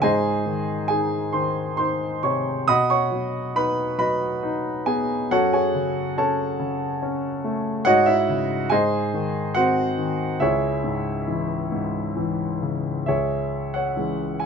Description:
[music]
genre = classical, lyrical solo piano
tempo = 69 BPM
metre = 3/4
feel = rubato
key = C# minor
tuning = A4 = 439 Hz
[part]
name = warm grand piano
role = solo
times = 0.0-14.5 s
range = C#2 to D#6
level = -20 LUFS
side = equal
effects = none
[sound]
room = moderate studio reverb, RT60 0.6 s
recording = minimal, uncompressed stereo recording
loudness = -21 LUFS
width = side -6 dB against mid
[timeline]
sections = 0.0-13.1 A section; 13.1-14.5 B section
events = none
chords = 0.0 G#; 2.7 B; 5.3 F#m; 7.9 G#sus4; 8.7 G#; 10.4 C#m

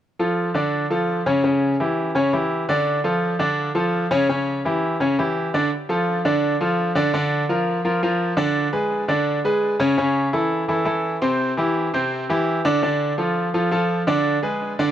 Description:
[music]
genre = latin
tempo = 169 BPM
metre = 4/4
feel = straight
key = D minor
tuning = A4 = 439 Hz
[part]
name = bright concert grand piano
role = solo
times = 0.2-14.9 s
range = C3 to D5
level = -19 LUFS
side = equal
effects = tape echo
[sound]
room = light reverb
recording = close, detailed microphones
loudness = -19 LUFS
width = side -11 dB against mid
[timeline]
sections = 0.0-5.7 A section; 5.7-14.9 B section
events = none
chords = 0.0 Dm; 1.4 C#dim; 2.9 Dm; 4.3 C#dim; 5.7 Dm; 7.1 Bb/D; 8.6 Bm69; 10.0 A; 11.4 C; 12.8 Dm; 14.2 Bm6

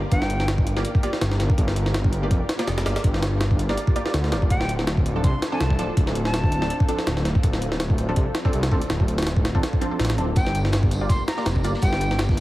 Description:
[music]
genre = drum and bass, jungle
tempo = 164 BPM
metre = 4/4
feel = swing 55% on 16ths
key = G minor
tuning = A4 = 440 Hz
[part]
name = soft string machine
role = sustained chords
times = 0.0-12.4 s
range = Bb3 to Bb4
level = -35 LUFS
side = equal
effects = none
[part]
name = detuned saw bass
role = bass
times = 0.0-12.4 s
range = D1 to D2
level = -24 LUFS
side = equal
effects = none
[part]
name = breathy bright jazz flute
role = melody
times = 0.1-0.5, 4.5-6.8, 10.4-12.2 s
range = G5 to C6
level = -30 LUFS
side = equal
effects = dub echo
[part]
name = jungle sampler-style drum kit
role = drums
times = 0.1-12.4 s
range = hi-hat, kick drum, snare drum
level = -22 LUFS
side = equal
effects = none
[part]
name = orchestra-hit-like synth stab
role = stabs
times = 0.8-11.7 s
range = F3 to D5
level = -30 LUFS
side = right 1 dB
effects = built-in reverb, dub echo
[part]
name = crunchy breakbeat drum kit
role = drums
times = 10.4-12.4 s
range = hi-hat, snare drum, tambourine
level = -40 LUFS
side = equal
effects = high-pass filter on hats, high-pass filter on snare, high-pass filter on perc, high-pass filter on room
[sound]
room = light reverb, small room ambience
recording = heavily compressed radio sound, vinyl crackle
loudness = -20 LUFS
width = side -17 dB against mid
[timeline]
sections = 0.0-12.4 A section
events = none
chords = 0.0 Gm7; 4.5 Dm7; 10.4 Gm7

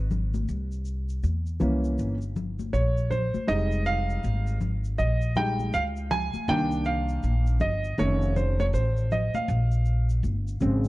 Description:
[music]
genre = hip hop, jazz-hop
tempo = 80 BPM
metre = 4/4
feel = swing 62% on 16ths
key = unclear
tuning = A4 = 441 Hz
[part]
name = upright bass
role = bass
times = 0.0-10.9 s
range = F1 to E2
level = -26 LUFS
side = equal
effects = none
[part]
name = congas and tube shaker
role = percussion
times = 0.1-10.9 s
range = none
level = -35 LUFS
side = left 4 dB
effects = none
[part]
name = dark grand piano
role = accompaniment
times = 1.6-10.9 s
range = Db3 to Ab5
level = -27 LUFS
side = right 1 dB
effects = none
[sound]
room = small room ambience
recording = dark, warm production, nothing above 10.3 kHz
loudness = -24 LUFS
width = side -18 dB against mid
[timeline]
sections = 0.0-10.9 A section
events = grand piano solo 0.0-10.9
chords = 0.5 C7b9; 3.5 Fm7; 6.5 Cm7; 8.0 F7b13; 9.5 Bbm7

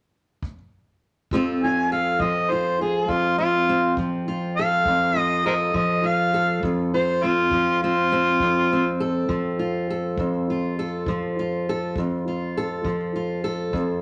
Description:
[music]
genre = acoustic country blues, solo or duo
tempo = 68 BPM (dotted quarters)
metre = 12/8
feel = straight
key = F major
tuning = A4 = 440 Hz
[part]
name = kick drum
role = drums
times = 0.4-13.9 s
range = none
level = -37 LUFS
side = equal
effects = none
[part]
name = fingerpicked steel-string acoustic guitar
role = accompaniment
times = 1.3-14.0 s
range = F2 to A4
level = -26 LUFS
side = equal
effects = none
[part]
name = overdriven harmonica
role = melody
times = 1.6-9.0 s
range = F4 to Ab5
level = -23 LUFS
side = equal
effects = none
[sound]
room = moderate studio reverb, RT60 0.9 s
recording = none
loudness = -23 LUFS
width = mono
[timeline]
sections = 0.0-1.3 A section; 1.3-14.0 B section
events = none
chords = 0.0 N.C.; 1.3 F

